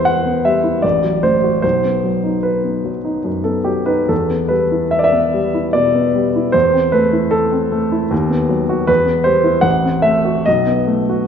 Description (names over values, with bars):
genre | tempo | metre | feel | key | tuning
classical, romantic character piece for solo piano | 74 BPM | 3/4 | uneven beats, rubato | E minor | A4 = 439 Hz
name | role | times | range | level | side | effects
warm baby grand piano | solo | 0.0-11.3 s | A1 to F#5 | -13 LUFS | equal | none
room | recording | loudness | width
moderate scoring stage reverb, RT60 2.1 s | recorded in a church or concert hall, nothing above 7.5 kHz | -13 LUFS | side -7 dB against mid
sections
0.0-11.3 A section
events
none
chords
0.0 Em; 0.8 F#dim/A; 1.6 B; 4.1 Em; 6.5 Am/E; 8.1 B7/D#; 8.9 Em; 9.7 F#dim/A; 10.5 B7